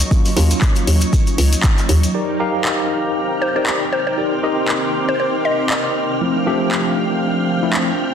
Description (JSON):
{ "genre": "deep house", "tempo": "118 BPM", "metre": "4/4", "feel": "swing 56% on 16ths", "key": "C dorian", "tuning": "A4 = 441 Hz", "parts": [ { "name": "hollow soft pad", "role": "sustained chords", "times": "0.0-8.1 s", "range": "F3 to D6", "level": "-26 LUFS", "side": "equal", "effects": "chorus, sidechain pumping" }, { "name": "hollow knocking FM bass", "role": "bass", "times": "0.0-2.1 s", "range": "Db2 to Eb2", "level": "-14 LUFS", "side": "equal", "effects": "sidechain pumping" }, { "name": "punchy analog drum machine", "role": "drums", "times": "0.0-7.9 s", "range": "handclaps, hi-hat", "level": "-22 LUFS", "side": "left 1 dB", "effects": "overdrive" }, { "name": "maracas", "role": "percussion", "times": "0.0-2.1 s", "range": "none", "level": "-27 LUFS", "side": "left 1 dB", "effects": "none" }, { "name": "granular cloud pad", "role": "texture", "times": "0.0-8.1 s", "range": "Gb3 to D6", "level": "-24 LUFS", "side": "right 1 dB", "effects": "built-in reverb, sidechain pumping" }, { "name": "mellow tine electric piano", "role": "stabs", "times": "0.1-7.9 s", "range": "F3 to F5", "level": "-21 LUFS", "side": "equal", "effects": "overdrive, medium stereo tremolo, sidechain pumping, dub echo" }, { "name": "electronic kick drum", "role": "drums", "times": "0.1-1.8 s", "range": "none", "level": "-15 LUFS", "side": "equal", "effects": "none" }, { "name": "soft string machine", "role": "texture", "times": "2.1-8.1 s", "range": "G5 to F6", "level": "-27 LUFS", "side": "equal", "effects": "ensemble chorus, sidechain pumping" }, { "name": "mallet-like synth pluck", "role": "melody", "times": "3.4-6.1 s", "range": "C5 to Eb5", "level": "-22 LUFS", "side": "left 1 dB", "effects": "chorus, dub echo" } ], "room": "moderate digital room reverb, RT60 1.0 s", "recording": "dense, heavily limited modern master", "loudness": "-15 LUFS", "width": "side -8 dB against mid", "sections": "0.0-2.1 A section; 2.1-8.1 B section", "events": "none", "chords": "0.0 Ebm9; 2.1 Cm9; 6.2 Dm9" }